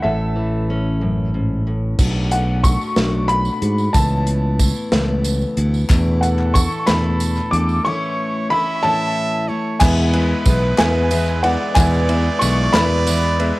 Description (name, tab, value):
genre	indie folk with a building arrangement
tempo	61 BPM (dotted quarters)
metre	6/8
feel	straight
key	E mixolydian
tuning	A4 = 440 Hz
part	dark upright piano	melody	0.0-13.6 s	E5 to D6	-22 LUFS	equal	tape echo
part	fingerpicked steel-string acoustic guitar	accompaniment	0.0-2.0 s	F#2 to A4	-22 LUFS	left 1 dB	cassette tape
part	fingered electric bass	bass	0.0-13.5 s	A1 to G#2	-19 LUFS	equal	none
part	picked steel-string acoustic guitar	accompaniment	2.0-13.6 s	E2 to F#4	-24 LUFS	left 2 dB	cassette tape
part	natural country drum kit	drums	2.0-13.5 s	crash cymbal, hi-hat, kick drum, ride cymbal, snare drum	-20 LUFS	equal	none
part	tambourine	percussion	2.0-13.2 s	none	-31 LUFS	right 8 dB	none
part	clear trumpet	second line	5.9-13.6 s	A4 to E5	-25 LUFS	right 3 dB	cassette tape
part	group handclap	percussion	5.9-13.3 s	none	-28 LUFS	left 5 dB	none
part	clear baby grand piano	accompaniment	9.8-13.6 s	E2 to E5	-24 LUFS	left 2 dB	cassette tape
room	light reverb, small room ambience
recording	home recording on cassette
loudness	-15 LUFS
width	side -20 dB against mid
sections	0.0-2.0 A section; 2.0-9.8 B section; 9.8-13.6 C section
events	break 7.9-9.8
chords	0.0 A; 2.0 Bm7; 3.9 Aadd9/C#; 5.9 E7sus4; 7.9 A; 9.8 E